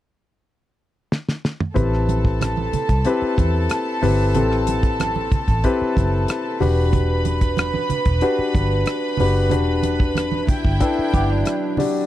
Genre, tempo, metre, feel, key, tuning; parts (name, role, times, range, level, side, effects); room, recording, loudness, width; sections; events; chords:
lush 1970s-style soul; 93 BPM; 4/4; straight; A4 = 440 Hz
damped 70s drum kit; drums; 1.1-11.9 s; hi-hat, kick drum, rim click, snare drum, toms; -22 LUFS; equal
dark grand piano; accompaniment; 1.7-12.1 s; C4 to G5; -22 LUFS; left 4 dB
clear studio string section; second line; 1.8-11.8 s; E4 to B5; -26 LUFS; right 2 dB
vintage muted fingered electric bass; bass; 1.8-11.4 s; E1 to E2; -21 LUFS; equal
congas; percussion; 1.8-11.9 s; -27 LUFS; right 7 dB
electric guitar at the edge of break-up; riff; 10.8-12.1 s; F#3 to A4; -26 LUFS; right 6 dB
little or no reverb; dry, close 1970s-style studio recording; -17 LUFS; side -13 dB against mid
0.0-1.8 A section; 1.8-12.1 B section
drum fill 1.1-1.8
0.0 N.C.; 1.8 Am7; 6.6 Em7